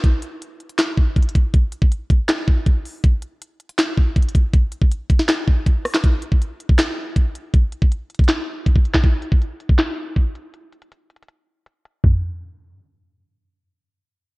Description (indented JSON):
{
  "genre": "hip hop",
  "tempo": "160 BPM",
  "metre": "4/4",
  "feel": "half-time",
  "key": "none",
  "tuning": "none",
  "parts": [
    { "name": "trap drum kit", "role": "drums", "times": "0.0-12.1 s", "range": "handclaps, hi-hat, kick drum, rim click, snare drum, toms", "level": "-16 LUFS", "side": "equal", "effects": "none" }
  ],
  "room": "light reverb",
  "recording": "worn, warbling old tape, cassette tape, warbly pitch drift, low-pass filter",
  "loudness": "-16 LUFS",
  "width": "side -24 dB against mid",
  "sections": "0.0-6.0 A section; 6.0-12.0 B section; 12.0-14.4 C section",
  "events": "none",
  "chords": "none"
}